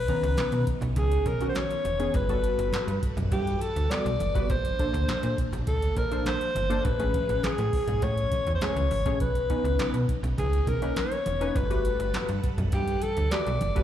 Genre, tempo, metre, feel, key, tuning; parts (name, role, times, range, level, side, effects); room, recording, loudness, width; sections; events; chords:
early-eighties boogie funk; 102 BPM; 4/4; straight; A4 = 440 Hz
breathy alto saxophone; melody; 0.0-13.8 s; G4 to D5; -29 LUFS; left 1 dB; slapback echo
string machine, violins; sustained chords; 0.0-13.8 s; E#3 to F#5; -39 LUFS; equal; phaser, ensemble chorus
slap-like FM bass; bass; 0.0-13.8 s; E1 to B2; -28 LUFS; equal
funky polysynth comp; accompaniment; 0.1-13.8 s; D#3 to A#5; -32 LUFS; left 1 dB; chorus, slapback echo
booming analog drum machine; drums; 0.1-13.8 s; handclaps, hi-hat, kick drum, snare drum; -30 LUFS; equal
congas; percussion; 0.1-13.7 s; -38 LUFS; right 1 dB
light reverb; live gig heard through the venue's PA, club reverb; -24 LUFS; side -11 dB against mid
0.0-13.8 A section
0.0 Bmaj9; 2.1 Gmaj9; 4.5 A#maj9; 6.8 Amaj9; 9.2 Bmaj9; 11.6 Gmaj9